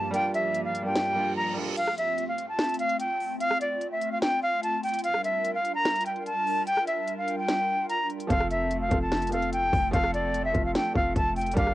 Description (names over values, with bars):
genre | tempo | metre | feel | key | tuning
hip hop, trap | 147 BPM | 4/4 | half-time | unclear | A4 = 439 Hz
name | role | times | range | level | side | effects
concert flute | melody | 0.0-11.7 s | D5 to Bb5 | -26 LUFS | equal | low-pass filter, cassette tape
felt-muted upright piano | accompaniment | 0.0-1.8, 8.3-11.7 s | F3 to A4 | -32 LUFS | right 1 dB | low-pass filter, cassette tape
hollow soft pad | sustained chords | 0.0-11.7 s | G2 to Bb4 | -36 LUFS | equal | ensemble chorus, cassette tape
trap drum kit | drums | 0.1-11.7 s | crash cymbal, hi-hat, kick drum, rim click, snare drum | -30 LUFS | equal | none
reverse cymbal | sound effects | 1.1-1.8 s | none | -36 LUFS | right 6 dB | none
clean 808-style bass | bass | 8.3-11.7 s | F1 to G1 | -31 LUFS | equal | none
room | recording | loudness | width
light reverb | home recording on cassette | -24 LUFS | side -15 dB against mid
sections
0.0-1.8 A section; 1.8-11.7 B section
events
reverse cymbal 1.1-1.8; break 1.4-1.8; kick muted 1.8-8.3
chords
0.0 Gm7; 1.8 F; 5.0 Gm7; 8.3 F